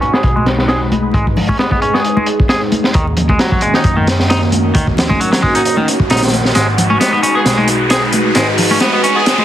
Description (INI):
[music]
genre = breakbeat, breaks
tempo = 133 BPM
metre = 4/4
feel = swing 55% on 16ths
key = G# minor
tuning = A4 = 441 Hz
[part]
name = phased analog pad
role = sustained chords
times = 0.0-9.4 s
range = D#3 to B4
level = -18 LUFS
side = equal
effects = phaser, chorus, sidechain pumping
[part]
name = twangy electric guitar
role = riff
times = 0.0-9.4 s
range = D#3 to G#4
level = -17 LUFS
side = equal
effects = low-pass filter, tape echo
[part]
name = crunchy breakbeat drum kit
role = drums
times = 0.0-9.4 s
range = hi-hat, kick drum, snare drum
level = -15 LUFS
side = equal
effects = low-pass filter on kick, low-pass filter on hats, low-pass filter on snare, low-pass filter on room
[part]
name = congas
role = percussion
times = 0.0-9.4 s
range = none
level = -20 LUFS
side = left 2 dB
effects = none
[part]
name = riser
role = sound effects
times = 1.1-9.4 s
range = none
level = -23 LUFS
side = equal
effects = none
[part]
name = bright horn section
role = stabs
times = 0.1-9.2 s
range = B3 to G#4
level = -24 LUFS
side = left 1 dB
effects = none
[part]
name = hollow-body short-scale picked electric bass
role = bass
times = 0.2-8.8 s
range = G#1 to F#2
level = -19 LUFS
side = equal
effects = low-pass filter
[sound]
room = light reverb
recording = dense, heavily limited modern master, vinyl crackle, high-pass filter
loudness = -11 LUFS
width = side -11 dB against mid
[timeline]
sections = 0.0-9.4 A section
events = build-up 0.0-9.4; filter sweep on drum 0.0-9.4; filter sweep on clean electric guitar 0.0-9.4; filter sweep 0.0-9.4; riser 1.1-9.4; drum fill 6.6-9.4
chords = 0.0 G#m7; 2.9 D#m7; 6.6 G#m7